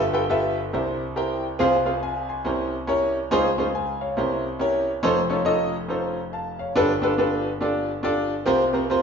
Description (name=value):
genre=gospel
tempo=140 BPM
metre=4/4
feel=swing 62% on 8ths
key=unclear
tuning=A4 = 441 Hz
part: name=clear concert grand piano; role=solo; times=0.0-9.0 s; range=F1 to C6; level=-21 LUFS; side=equal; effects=none
room=wet large studio reverb, RT60 1.3 s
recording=band playing live in one room, nothing above 7.5 kHz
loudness=-21 LUFS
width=side -6 dB against mid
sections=0.0-9.0 A section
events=none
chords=0.0 G13; 0.7 C7; 1.6 Fm/C; 2.5 C7b9; 3.3 Dbmaj9; 4.2 C7b9; 5.0 F7b13; 6.8 G9; 8.5 C7sus4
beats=0.30 0.73 1.17 | 1.59 2.02 2.46 2.89 | 3.32 3.75 4.17 4.61 | 5.04 5.46 5.89 6.32 | 6.75 7.18 7.61 8.04 | 8.47 8.90